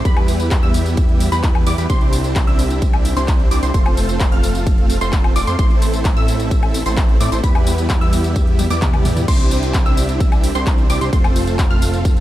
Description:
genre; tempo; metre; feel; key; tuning
EDM, festival progressive house; 130 BPM; 4/4; straight; unclear; A4 = 440 Hz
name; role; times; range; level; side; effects
wide unison pluck; arpeggios; 0.0-12.2 s; B5 to F6; -26 LUFS; equal; sidechain pumping, tape echo
supersaw chords; riff; 0.0-12.2 s; G3 to F5; -22 LUFS; right 1 dB; sidechain pumping, tape echo
fat analog bass; bass; 0.0-12.2 s; F1 to A2; -21 LUFS; equal; sidechain pumping
big-room dance drum kit; drums; 0.1-12.2 s; crash cymbal, handclaps, hi-hat, ride cymbal, tambourine, toms, woodblock; -26 LUFS; left 2 dB; none
electronic kick drum; drums; 0.1-12.1 s; none; -15 LUFS; equal; none
room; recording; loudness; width
little or no reverb; dark, warm production; -14 LUFS; side -14 dB against mid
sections
0.0-9.3 A section; 9.3-12.2 A section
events
drop 0.0-9.3, 9.3-12.2; drum fill 8.6-9.3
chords
0.1 Em; 1.9 Cadd9; 3.7 F; 5.6 Am; 7.4 Em; 9.3 Cadd9; 11.1 F

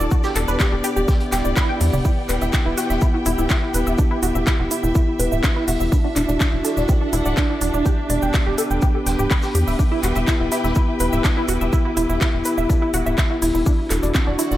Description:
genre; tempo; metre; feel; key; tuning
melodic techno; 124 BPM; 4/4; straight; E minor; A4 = 440 Hz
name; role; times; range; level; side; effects
dark analog pad; sustained chords; 0.0-14.6 s; B3 to G4; -25 LUFS; left 1 dB; chorus, vintage 12-bit sampler grit, sidechain pumping
tight sequenced synth; arpeggios; 0.0-14.5 s; C4 to B5; -24 LUFS; equal; chorus, cassette tape, sidechain pumping, analog delay
tight sequencer bass; bass; 0.0-14.6 s; D1 to E2; -22 LUFS; equal; sidechain pumping
house drum kit; drums; 0.0-14.6 s; handclaps, hi-hat, shaker, toms; -26 LUFS; equal; sidechain pumping on perc, sidechain pumping on hats, sidechain pumping on toms
warm symphonic string section; texture; 0.0-14.6 s; B3 to G5; -29 LUFS; equal; sidechain pumping
electronic kick drum; drums; 0.1-14.2 s; none; -19 LUFS; equal; none
street-band drum kit; drums; 0.1-14.6 s; hi-hat, shaker, snare drum; -37 LUFS; equal; sidechain pumping on hats, high-pass filter on hats, high-pass filter on snare, sidechain pumping on perc, high-pass filter on perc, high-pass filter on room
swell; sound effects; 1.2-2.0 s; none; -31 LUFS; right 6 dB; none
room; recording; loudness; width
moderate plate reverb, RT60 1.4 s; dreamy mix soaked in reverb; -17 LUFS; side -14 dB against mid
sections
0.0-14.6 A section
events
swell 1.2-2.0; drum fill 1.8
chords
0.1 G/E; 2.0 Em; 5.9 Dadd9/E; 7.9 G/E; 9.8 Em; 13.7 Dadd9/E

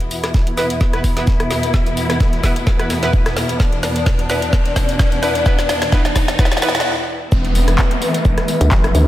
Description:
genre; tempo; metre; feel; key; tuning
bass house; 129 BPM; 4/4; swing 55% on 16ths; unclear; A4 = 440 Hz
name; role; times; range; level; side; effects
dark symphonic string section; sustained chords; 0.0-9.1 s; E2 to E5; -20 LUFS; left 1 dB; sidechain pumping, low-pass filter
garage drum kit; drums; 0.0-9.1 s; handclaps, hi-hat, rim click, snare drum, tambourine; -22 LUFS; equal; high-pass filter on perc, high-pass filter on hats, high-pass filter on snare, high-pass filter on room
riser and downlifter; sound effects; 2.4-9.1 s; none; -27 LUFS; equal; none
breakbeat sampler-style drum kit; drums; 0.1-9.1 s; hi-hat, shaker, snare drum; -35 LUFS; equal; none
electronic kick drum; drums; 0.3-8.8 s; none; -16 LUFS; equal; none
clear horn section; stabs; 0.6-6.7 s; B3 to B4; -24 LUFS; right 2 dB; sidechain pumping, tape echo
vowel-sweep wobble bass; bass; 7.3-9.1 s; E1 to D2; -14 LUFS; equal; chorus, tube saturation, sidechain pumping
room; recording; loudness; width
moderate lush hall reverb, RT60 1.9 s; dreamy mix soaked in reverb; -14 LUFS; side -14 dB against mid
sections
0.0-7.3 A section; 7.3-9.1 B section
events
build-up 0.0-7.3; drum fill 0.0-6.9; riser 2.4-6.9; stop 6.9-7.3; drop 7.3-9.1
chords
0.0 E5

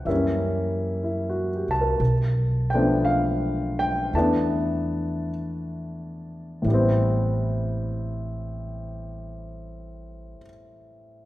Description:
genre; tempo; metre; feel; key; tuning
jazz ballad; 43-65 BPM; 4/4; swing 68% on 8ths; A minor; A4 = 440 Hz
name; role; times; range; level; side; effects
warm grand piano; accompaniment; 0.0-11.3 s; A2 to A5; -24 LUFS; left 1 dB; none
upright bass; bass; 0.1-10.3 s; A1 to F#2; -28 LUFS; equal; none
room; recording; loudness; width
wet recital hall reverb, RT60 1.7 s; recorded in a church or concert hall; -22 LUFS; side -16 dB against mid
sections
0.0-2.0 A section; 2.0-6.7 B section; 6.7-11.3 C section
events
slowing down 0.0-6.7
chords
0.1 F#7b9; 2.0 Bm7b5; 4.1 E7sus4; 6.7 Am9

